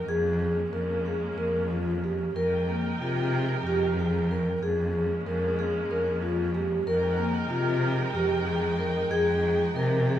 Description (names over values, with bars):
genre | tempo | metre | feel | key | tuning
contemporary instrumental, chamber music in an uneven meter | 187 BPM (eighths) | 7/8 | straight | F minor | A4 = 440 Hz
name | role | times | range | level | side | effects
rich chamber string section | sustained chords | 0.0-10.2 s | F3 to G5 | -33 LUFS | right 2 dB | none
rich cello | bass | 0.0-10.2 s | F2 to C3 | -28 LUFS | equal | none
vibraphone with soft mallets | arpeggios | 0.1-10.2 s | Bb3 to Bb4 | -28 LUFS | left 1 dB | none
room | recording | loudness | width
moderate recital hall reverb, RT60 1.8 s | minimal, uncompressed stereo recording | -24 LUFS | side -11 dB against mid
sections
0.0-10.2 A section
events
none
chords
0.1 Bbm7/F; 2.4 Fm11; 4.6 Bbm7/F; 6.9 Fm11